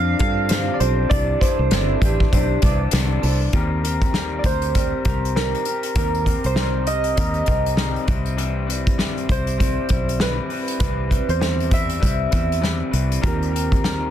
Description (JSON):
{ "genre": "indie pop, bedroom pop", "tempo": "99 BPM", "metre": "4/4", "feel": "swing 60% on 16ths", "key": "unclear", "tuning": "A4 = 441 Hz", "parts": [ { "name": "soft electric-piano-like synth keys", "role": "melody", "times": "0.0-12.9 s", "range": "Bb4 to F5", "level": "-25 LUFS", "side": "right 2 dB", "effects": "wide subtle chorus, ping-pong delay" }, { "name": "electric guitar through a small old amp", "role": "accompaniment", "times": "0.0-14.1 s", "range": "G2 to B4", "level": "-26 LUFS", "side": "left 4 dB", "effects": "wide subtle chorus, warbly pitch drift" }, { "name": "reed electric piano", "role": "accompaniment", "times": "0.0-3.6, 13.2-14.1 s", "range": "C4 to D5", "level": "-32 LUFS", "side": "right 8 dB", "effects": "none" }, { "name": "fingered electric bass", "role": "bass", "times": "0.0-14.1 s", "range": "G1 to G2", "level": "-23 LUFS", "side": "equal", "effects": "none" }, { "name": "electric guitar through a small old amp", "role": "second line", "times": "0.2-3.4 s", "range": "E4 to D5", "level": "-29 LUFS", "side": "right 9 dB", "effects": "analog chorus, ping-pong delay" }, { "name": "unplugged drum kit", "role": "drums", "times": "0.2-14.0 s", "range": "hi-hat, kick drum, snare drum", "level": "-22 LUFS", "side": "equal", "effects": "none" } ], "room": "light reverb, small room ambience", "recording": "dense, heavily limited modern master", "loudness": "-18 LUFS", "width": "side -10 dB against mid", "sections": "0.0-3.5 A section; 3.5-14.1 B section", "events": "none", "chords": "0.0 G7sus4; 1.1 Cmaj9; 3.5 Eb6; 8.1 Cmaj7; 13.2 Eb6", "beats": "0.51 | 1.11 1.72 2.33 2.93 | 3.54 4.14 4.75 5.36 | 5.96 6.57 7.17 7.78 | 8.39 8.99 9.60 10.21 | 10.81 11.42 12.03 12.63 | 13.24 13.85" }